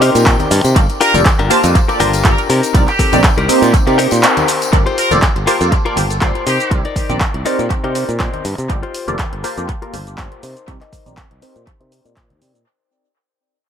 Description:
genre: filtered disco house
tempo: 121 BPM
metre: 4/4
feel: swing 54% on 16ths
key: unclear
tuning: A4 = 440 Hz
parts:
  - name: funky polysynth comp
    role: accompaniment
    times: 0.0-12.6 s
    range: Bb3 to A5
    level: -18 LUFS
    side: right 1 dB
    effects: chorus, tremolo, phaser, sidechain pumping, low-pass filter, tape echo
  - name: direct-recorded clean electric guitar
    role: riff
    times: 0.0-12.4 s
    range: C4 to G5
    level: -20 LUFS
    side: left 6 dB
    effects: sidechain pumping, low-pass filter, tape echo
  - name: modern bright fingered electric bass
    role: bass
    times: 0.0-12.6 s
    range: F1 to C3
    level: -17 LUFS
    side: right 1 dB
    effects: sidechain pumping, low-pass filter
  - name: punchy analog drum machine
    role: drums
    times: 0.0-12.6 s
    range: cabasa, handclaps, hi-hat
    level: -19 LUFS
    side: equal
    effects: sidechain pumping on hats, sidechain pumping on perc, tape echo
  - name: tambourine and congas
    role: percussion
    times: 0.2-12.6 s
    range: none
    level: -26 LUFS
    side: left 3 dB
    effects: sidechain pumping on perc, low-pass filter on perc
  - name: electronic kick drum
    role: drums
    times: 0.3-12.3 s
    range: none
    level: -15 LUFS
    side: equal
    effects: none
  - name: muted trumpet section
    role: melody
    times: 1.0-6.8 s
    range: G4 to Bb4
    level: -21 LUFS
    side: right 2 dB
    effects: sidechain pumping, low-pass filter, tape echo
room: moderate spring reverb, RT60 2.0 s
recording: echo-heavy mix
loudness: -12 LUFS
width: side -8 dB against mid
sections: 0.0-4.7 A section; 4.7-12.7 B section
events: drop 0.0-4.7; clean electric guitar fill 0.0-0.8, 3.7-4.7; band accent 4.2; fade-out 4.7-12.7; filter sweep 4.7-12.7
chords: 0.0 Cm7; 0.8 Gm7; 2.5 Cm7; 4.7 Gm7; 6.5 Cm7; 8.7 Gm7; 10.4 Cm7

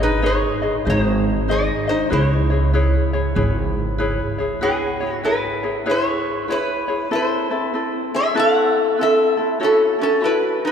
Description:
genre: Hawaiian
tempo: 96 BPM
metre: 4/4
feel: swing 64% on 8ths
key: C# minor, E major from 4.6 s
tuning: A4 = 440 Hz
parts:
  - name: metal-body resonator slide guitar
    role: melody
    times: 0.0-10.7 s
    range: B3 to F#5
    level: -19 LUFS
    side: equal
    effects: none
  - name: ukulele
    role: accompaniment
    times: 0.0-10.7 s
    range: C4 to D#5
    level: -23 LUFS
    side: left 2 dB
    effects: none
  - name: upright bass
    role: bass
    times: 0.0-4.2 s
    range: G#1 to C#2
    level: -21 LUFS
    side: right 1 dB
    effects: none
room: wet cathedral reverb, RT60 4.5 s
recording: recorded in a church or concert hall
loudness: -17 LUFS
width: side -7 dB against mid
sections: 0.0-4.6 A section; 4.6-10.7 B section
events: none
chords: 0.0 G#sus4; 0.9 G#; 2.1 C#m7; 4.6 E6; 7.1 Amadd9; 9.6 F#m7

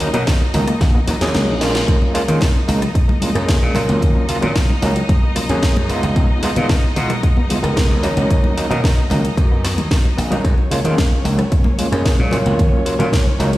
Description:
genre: nu-disco, nu disco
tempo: 112 BPM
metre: 4/4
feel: straight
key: unclear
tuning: A4 = 440 Hz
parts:
  - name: overdriven tine electric piano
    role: accompaniment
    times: 0.0-13.5 s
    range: F#3 to Bb4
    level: -21 LUFS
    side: equal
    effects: medium tremolo, sidechain pumping, analog delay
  - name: rich chamber violin section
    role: sustained chords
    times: 0.0-13.6 s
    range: Db4 to Eb5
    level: -28 LUFS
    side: equal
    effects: sidechain pumping
  - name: wide unison pluck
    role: arpeggios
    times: 0.0-13.6 s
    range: Db3 to F#4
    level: -26 LUFS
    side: left 1 dB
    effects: vintage 12-bit sampler grit, sidechain pumping, analog delay
  - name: house drum kit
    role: drums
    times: 0.0-13.6 s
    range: hi-hat, rim click, snare drum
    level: -25 LUFS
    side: equal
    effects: small room ambience
  - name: slap bass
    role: bass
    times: 0.1-13.6 s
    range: A#1 to Eb3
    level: -19 LUFS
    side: equal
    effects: none
  - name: electronic kick drum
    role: drums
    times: 0.3-13.2 s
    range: none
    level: -15 LUFS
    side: equal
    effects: small room ambience
  - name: reverse cymbal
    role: sound effects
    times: 1.2-1.9 s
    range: none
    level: -31 LUFS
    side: left 2 dB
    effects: none
  - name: congas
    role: percussion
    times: 2.0-13.4 s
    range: none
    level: -26 LUFS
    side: left 1 dB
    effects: none
room: light reverb, digital ambience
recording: played on a big sound system in a bare room, stone room reverb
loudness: -14 LUFS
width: side -16 dB against mid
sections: 0.0-13.6 A section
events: drum fill 0.8-1.9; reverse cymbal 1.2-1.9; kick drops out 1.3-1.9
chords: 0.0 Bmaj7 (rootless); 1.9 Gbmaj7; 4.0 Ebm7; 6.2 Db7; 8.0 Bmaj7; 10.4 Gbmaj7; 12.6 Ebm7

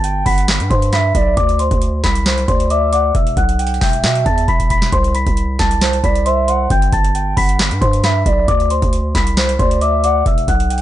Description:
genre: hip hop, trap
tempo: 135 BPM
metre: 4/4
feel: half-time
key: unclear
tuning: A4 = 441 Hz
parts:
  - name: celesta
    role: melody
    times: 0.0-10.8 s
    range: C5 to B6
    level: -18 LUFS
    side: left 3 dB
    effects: low-pass filter
  - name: gliding portamento lead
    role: second line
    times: 0.0-10.8 s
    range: C5 to G5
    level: -22 LUFS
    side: right 4 dB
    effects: chorus, ping-pong delay
  - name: distorted 808-style bass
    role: bass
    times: 0.0-10.8 s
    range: E1 to B2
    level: -18 LUFS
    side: equal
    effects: distortion
  - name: booming analog drum machine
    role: drums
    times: 0.0-10.8 s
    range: handclaps, hi-hat, kick drum, snare drum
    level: -17 LUFS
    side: equal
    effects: overdrive
room: studio ambience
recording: nothing above 10.4 kHz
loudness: -13 LUFS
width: side -13 dB against mid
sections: 0.0-10.8 A section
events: drum fill 4.5-4.9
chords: 0.0 Gadd9; 1.4 Cmaj9#11; 3.1 Em; 4.9 Cmaj13; 6.7 Gadd9; 8.5 Cmaj9#11; 10.3 Em

